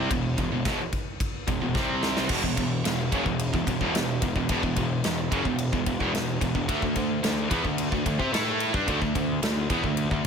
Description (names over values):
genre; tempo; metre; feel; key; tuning
heavy metal; 110 BPM; 4/4; straight; unclear; A4 = 441 Hz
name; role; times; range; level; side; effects
cranked stack guitar; riff; 0.0-10.3 s; E2 to A4; -32 LUFS; left 1 dB; overdrive
scooped high-gain guitar; riff; 0.0-10.3 s; E2 to A4; -31 LUFS; left 12 dB; distortion
tight distorted guitar; riff; 0.0-10.3 s; E2 to A4; -30 LUFS; right 10 dB; distortion
fuzz picked electric bass; bass; 0.0-10.3 s; E1 to C3; -31 LUFS; left 1 dB; overdrive
big rock drum kit; drums; 0.1-10.3 s; crash cymbal, kick drum, ride cymbal, snare drum; -29 LUFS; equal; none
room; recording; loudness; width
little or no reverb; none; -24 LUFS; side -6 dB against mid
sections
0.0-2.3 A section; 2.3-10.3 B section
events
drum fill 1.8-2.3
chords
0.1 E5; 1.8 C5; 2.3 E5; 6.7 D5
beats
| 0.11 0.66 1.21 1.76 | 2.31 2.86 3.40 3.95 | 4.50 5.05 5.59 6.14 | 6.69 7.24 7.79 8.33 | 8.88 9.43 9.98